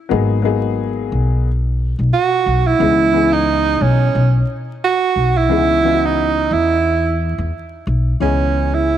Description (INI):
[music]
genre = hip hop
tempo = 89 BPM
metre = 4/4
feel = swing 58% on 16ths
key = C# dorian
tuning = A4 = 440 Hz
[part]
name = dark upright piano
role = accompaniment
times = 0.1-9.0 s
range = E3 to D#5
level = -21 LUFS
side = left 10 dB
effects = none
[part]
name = upright bass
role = bass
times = 0.1-9.0 s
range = G#1 to E2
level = -18 LUFS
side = left 1 dB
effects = none
[part]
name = breathy tenor saxophone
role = melody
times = 2.1-9.0 s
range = C#4 to F#4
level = -16 LUFS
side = right 5 dB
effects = tape echo
[sound]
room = light reverb, studio ambience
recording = 1960s-style stereo, vinyl crackle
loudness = -14 LUFS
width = side -10 dB against mid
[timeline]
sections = 0.0-8.2 A section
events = tenor saxophone solo 0.0-8.2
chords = 0.1 G#m9; 2.8 C#m9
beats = | 0.12 0.79 1.46 2.14 | 2.81 3.49 4.16 4.83 | 5.51 6.18 6.86 7.53 | 8.21 8.88